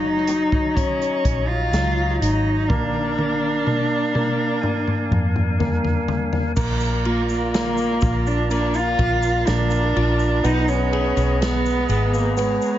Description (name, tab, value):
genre	pop ballad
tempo	62 BPM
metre	4/4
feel	straight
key	unclear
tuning	A4 = 442 Hz
part	dark cello	melody	0.0-12.8 s	Ab3 to F4	-22 LUFS	equal	analog delay
part	clear concert grand piano	accompaniment	0.0-12.8 s	Gb3 to Ab4	-25 LUFS	right 1 dB	analog delay
part	tonewheel organ	sustained chords	0.0-12.8 s	D4 to Bb5	-29 LUFS	equal	slow rotary speaker
part	vintage muted fingered electric bass	bass	0.0-12.6 s	Gb1 to F2	-22 LUFS	equal	none
part	unplugged drum kit	drums	0.3-12.6 s	crash cymbal, hi-hat, kick drum, ride cymbal, snare drum, toms	-26 LUFS	left 1 dB	none
part	tube shaker	percussion	6.6-12.8 s	none	-42 LUFS	left 5 dB	none
room	light reverb, studio reverb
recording	echo-heavy mix, nothing above 7.6 kHz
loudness	-18 LUFS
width	side -12 dB against mid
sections	0.0-6.6 A section; 6.6-12.8 B section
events	drum fill 2.7-6.6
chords	0.0 Ebm7/Gb; 2.7 Bb; 10.4 Abmadd9